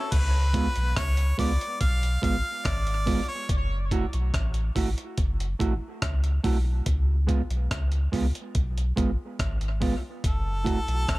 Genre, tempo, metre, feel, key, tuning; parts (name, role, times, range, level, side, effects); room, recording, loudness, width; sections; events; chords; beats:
dub reggae; 71 BPM; 4/4; straight; A4 = 440 Hz
bright harmonica; melody; 0.0-3.5, 10.3-11.2 s; A4 to E#5; -32 LUFS; equal; dub echo
warm sub bass; bass; 0.1-11.2 s; F#1 to C#2; -26 LUFS; equal
breakbeat sampler-style drum kit; drums; 0.1-11.2 s; crash cymbal, hi-hat, kick drum, rim click; -28 LUFS; equal
mellow electric guitar; accompaniment; 0.5-10.8 s; G#3 to F#4; -31 LUFS; right 4 dB; dub echo
little or no reverb; -24 LUFS; side -19 dB against mid
0.1-11.2 A section
0.1 C#7; 3.5 F#m7; 6.9 C#7; 10.2 F#m7
| 0.12 0.96 1.81 2.65 | 3.49 4.34 5.18 6.02 | 6.87 7.71 8.55 9.40 | 10.24 11.08